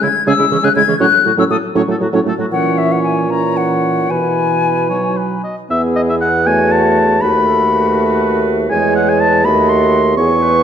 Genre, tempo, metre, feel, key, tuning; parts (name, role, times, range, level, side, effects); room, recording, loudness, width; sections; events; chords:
quick classical-period movement for wind quintet; 75-84 BPM (dotted quarters); 6/8; rubato; E major; A4 = 442 Hz
mellow silver concert flute; melody; 0.0-10.6 s; F#4 to G#6; -18 LUFS; left 7 dB
warm oboe; second line; 0.0-10.6 s; C#4 to C#6; -17 LUFS; left 1 dB
warm French horn; accompaniment; 0.0-10.6 s; E3 to B3; -19 LUFS; right 2 dB
warm clarinet; accompaniment; 0.0-10.6 s; E3 to D#5; -21 LUFS; right 7 dB
dark bassoon; bass; 0.0-10.6 s; D#2 to C#3; -17 LUFS; right 2 dB
wet recital hall reverb, RT60 1.6 s; dark, warm production; -11 LUFS; side -8 dB against mid
0.0-5.7 A section; 5.7-10.6 B section
0.0 C#m; 1.0 F#m/A; 2.5 F#7/A#; 4.1 E/B; 4.9 B; 5.7 E; 6.5 F#m7/E; 7.2 B7/D#; 8.7 E; 9.4 D#dim7